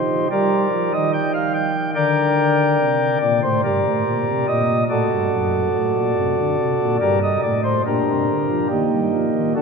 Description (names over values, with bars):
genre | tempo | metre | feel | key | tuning
classical, chorale-style piece for pipe organ | 71 BPM | 4/4 | rubato | G minor | A4 = 441 Hz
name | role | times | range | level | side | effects
pipe organ, flutes | solo | 0.0-9.6 s | F#2 to G5 | -17 LUFS | equal | none
room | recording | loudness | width
wet cathedral reverb, RT60 4.7 s | none | -17 LUFS | side -5 dB against mid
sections
0.0-9.6 A section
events
none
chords
0.3 Gm; 5.3 D7/F#; 7.0 Gm; 8.7 Eb